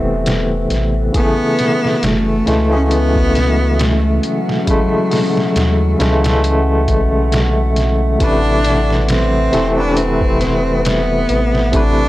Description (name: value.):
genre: trip hop.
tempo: 68 BPM.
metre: 4/4.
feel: swing 55% on 16ths.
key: unclear.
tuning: A4 = 439 Hz.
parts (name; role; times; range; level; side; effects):
barky tine electric piano; accompaniment; 0.0-12.1 s; C3 to B4; -17 LUFS; equal; tremolo, tape echo.
warbly tape-like pad; sustained chords; 0.0-12.1 s; C#4 to A5; -24 LUFS; left 1 dB; chorus, built-in reverb, vintage 12-bit sampler grit.
warm sub bass; bass; 0.0-12.1 s; E1 to D#2; -17 LUFS; equal; none.
trip hop sampler-style drum kit; drums; 0.3-12.0 s; hi-hat, kick drum, snare drum; -20 LUFS; equal; none.
rich cello; melody; 1.2-12.1 s; F#3 to D4; -19 LUFS; equal; tape echo.
room: little or no reverb.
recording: dry, gritty hardware recording.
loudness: -12 LUFS.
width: side -16 dB against mid.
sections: 0.0-12.1 A section.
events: none.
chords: 0.0 Amadd9; 1.1 F#m7; 8.2 Amadd9.